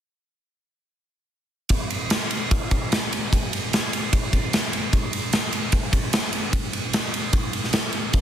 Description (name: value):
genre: rock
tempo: 149 BPM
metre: 4/4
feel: straight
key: none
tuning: none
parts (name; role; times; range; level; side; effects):
- big rock drum kit; drums; 1.7-8.2 s; kick drum, ride cymbal, snare drum; -21 LUFS; equal; none
room: light reverb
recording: dense, heavily limited modern master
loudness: -21 LUFS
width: side -10 dB against mid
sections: 1.7-8.2 A section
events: none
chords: none